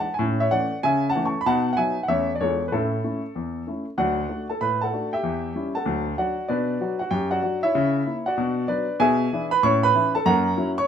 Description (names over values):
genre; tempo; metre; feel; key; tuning
jazz, stride piano; 191 BPM; 4/4; swing 64% on 8ths; A major, D major from 4.0 s; A4 = 443 Hz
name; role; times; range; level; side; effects
warm grand piano; solo; 0.0-10.9 s; D2 to C#6; -21 LUFS; equal; none
room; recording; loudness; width
wet club reverb, RT60 0.5 s; minimal, uncompressed stereo recording; -21 LUFS; side -8 dB against mid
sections
0.0-4.0 A section; 4.0-10.9 B section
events
none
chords
0.2 A; 0.8 A/C#; 1.4 B; 2.1 A/E; 2.4 E7b9; 2.7 A; 4.0 D; 5.2 C#dim/E; 5.9 D; 6.5 Bm; 7.7 A#dim/C#; 8.4 Bm; 9.0 E7/B; 9.6 A; 10.2 F#7